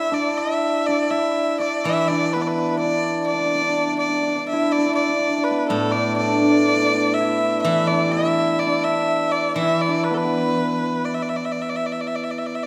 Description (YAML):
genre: chinese traditional, Chinese chamber ensemble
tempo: 62 BPM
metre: 4/4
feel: straight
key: D zhi mode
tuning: A4 = 440 Hz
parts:
  - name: bright erhu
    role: melody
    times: 0.0-12.7 s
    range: A4 to E5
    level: -24 LUFS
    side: equal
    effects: none
  - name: hammered dulcimer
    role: second line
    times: 0.0-12.7 s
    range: A3 to G4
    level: -24 LUFS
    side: equal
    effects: none
  - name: steel-string zither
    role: accompaniment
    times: 1.9-12.5 s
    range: A2 to E3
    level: -30 LUFS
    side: equal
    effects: none
room: wet concert hall reverb, RT60 2.3 s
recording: none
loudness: -21 LUFS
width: mono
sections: 0.0-12.7 A section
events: none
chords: none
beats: 0.87 1.85 2.83 | 3.79 4.76 5.72 6.67 | 7.64 8.61 9.57 10.54 | 11.52 12.50